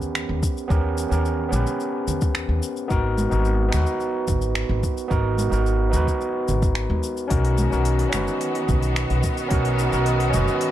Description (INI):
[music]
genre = sunset chillout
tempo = 109 BPM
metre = 4/4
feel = straight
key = unclear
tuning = A4 = 445 Hz
[part]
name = overdriven tine electric piano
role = accompaniment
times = 0.0-10.7 s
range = B3 to B4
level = -24 LUFS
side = moving between left 3 dB and right 6 dB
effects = auto-pan, vintage 12-bit sampler grit, ping-pong delay
[part]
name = upright bass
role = bass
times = 0.0-10.5 s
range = F#1 to D#2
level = -23 LUFS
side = equal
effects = none
[part]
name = smooth R&B drum kit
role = drums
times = 0.0-10.7 s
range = cabasa, finger snaps, hi-hat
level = -32 LUFS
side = left 1 dB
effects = overdrive
[part]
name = electronic kick drum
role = drums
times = 0.4-9.6 s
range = none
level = -23 LUFS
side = equal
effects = overdrive
[part]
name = congas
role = percussion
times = 1.5-10.4 s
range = none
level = -32 LUFS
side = right 3 dB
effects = none
[part]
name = rich symphonic string section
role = sustained chords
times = 7.3-10.7 s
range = D#3 to F#4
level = -28 LUFS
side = left 2 dB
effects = none
[part]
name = wind-like tuned noise texture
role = texture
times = 8.1-10.7 s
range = D#5 to D#6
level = -35 LUFS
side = left 1 dB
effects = built-in reverb
[sound]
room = small room ambience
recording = none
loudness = -20 LUFS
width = side -12 dB against mid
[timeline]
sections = 0.0-10.7 A section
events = none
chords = 0.0 D#7b13; 2.9 G#m9; 7.3 Bmaj7